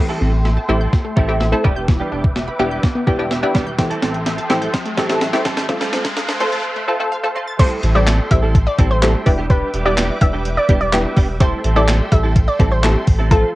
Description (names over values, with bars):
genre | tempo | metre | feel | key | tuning
dance-pop | 126 BPM | 4/4 | straight | A minor | A4 = 436 Hz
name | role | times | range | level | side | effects
punchy chord stab | accompaniment | 0.0-13.6 s | F3 to C5 | -21 LUFS | left 1 dB | chorus, sidechain pumping
filtered supersaw swell | sustained chords | 0.0-13.6 s | A4 to D6 | -28 LUFS | equal | sidechain pumping
wide unison pluck | arpeggios | 0.0-7.6 s | E3 to A6 | -27 LUFS | equal | sidechain pumping, tape echo
riser | sound effects | 2.3-6.6 s | none | -29 LUFS | equal | none
direct-recorded clean electric guitar | riff | 0.1-13.5 s | G3 to A4 | -25 LUFS | right 3 dB | ensemble chorus
warm sub bass | bass | 0.2-13.4 s | E1 to A1 | -19 LUFS | equal | sidechain pumping
clean 12-bit digital drum machine | drums | 0.5-13.4 s | crash cymbal, handclaps, hi-hat, kick drum, snare drum | -17 LUFS | equal | overdrive
analog pluck | melody | 7.6-13.4 s | A4 to E5 | -21 LUFS | equal | chorus, sidechain pumping, cassette tape
room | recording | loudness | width
little or no reverb | home recording on cassette, high-pass filter | -14 LUFS | side -17 dB against mid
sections
0.0-7.6 A section; 7.6-13.6 B section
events
build-up 0.0-7.6; drum fill 0.0-6.6; filter sweep 0.0-7.6; riser 2.3-7.6; drop 7.6-13.6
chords
0.0 Am7; 1.6 Em7; 3.8 Am7; 5.7 F; 7.6 Am7; 9.3 Em7; 11.4 Am7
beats
0.45 0.93 1.41 | 1.88 2.36 2.83 3.31 | 3.79 4.26 4.74 5.21 | 5.69 6.17 6.64 7.12 | 7.60 8.07 8.55 9.02 | 9.50 9.98 10.45 10.93 | 11.40 11.88 12.36 12.83 | 13.31